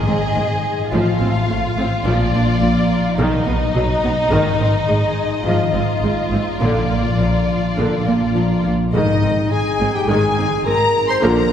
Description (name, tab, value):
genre	cinematic, heroic adventure film score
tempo	106 BPM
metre	4/4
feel	straight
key	Ab lydian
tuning	A4 = 440 Hz
part	warm symphonic violin section	melody	0.0-11.5 s	D5 to C6	-25 LUFS	left 2 dB	none
part	warm symphonic violin section	second line	0.0-11.5 s	D#4 to C6	-23 LUFS	left 1 dB	none
part	warm symphonic viola section	accompaniment	0.0-11.5 s	D3 to Eb4	-23 LUFS	right 1 dB	none
part	concert harp	arpeggios	0.0-11.5 s	Ab2 to Eb5	-22 LUFS	left 3 dB	none
part	rich symphonic cello section	bass	0.1-11.3 s	Ab2 to B2	-23 LUFS	right 2 dB	none
part	rich symphonic double bass section	bass	0.1-11.3 s	Ab1 to B1	-23 LUFS	right 1 dB	none
part	clear clarinet	second line	8.9-11.5 s	Eb4 to C5	-20 LUFS	left 1 dB	none
part	timpani	percussion	8.9-9.8 s	Ab2	-26 LUFS	left 3 dB	none
room	wet concert hall reverb, RT60 2.0 s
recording	heard from further back in the room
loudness	-15 LUFS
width	side -9 dB against mid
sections	0.0-8.9 A section; 8.9-11.5 B section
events	build-up 0.0-8.9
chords	0.0 Ab; 0.9 F/A; 2.0 Bb; 3.2 B; 4.3 Ab; 5.5 Fm7/Ab; 6.6 Bb; 8.9 Ab